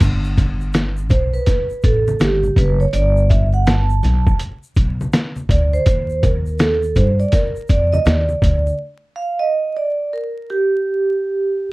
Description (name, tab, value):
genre	hip hop, jazz-hop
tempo	82 BPM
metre	4/4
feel	swing 64% on 16ths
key	G major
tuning	A4 = 439 Hz
part	upright bass	bass	0.0-8.7 s	F#1 to G2	-18 LUFS	equal	none
part	trip hop sampler-style drum kit	drums	0.0-8.7 s	crash cymbal, hi-hat, kick drum, snare drum	-17 LUFS	equal	none
part	egg shaker and congas	percussion	0.0-8.8 s	none	-28 LUFS	left 1 dB	none
part	vibraphone with soft mallets	accompaniment	1.1-11.7 s	G4 to A5	-19 LUFS	right 2 dB	none
room	little or no reverb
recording	dry, close 1970s-style studio recording, vinyl crackle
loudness	-15 LUFS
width	side -20 dB against mid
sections	0.0-11.7 A section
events	vibraphone solo 0.0-11.7; break 8.8-11.7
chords	0.0 Gadd9; 5.9 Ebmaj7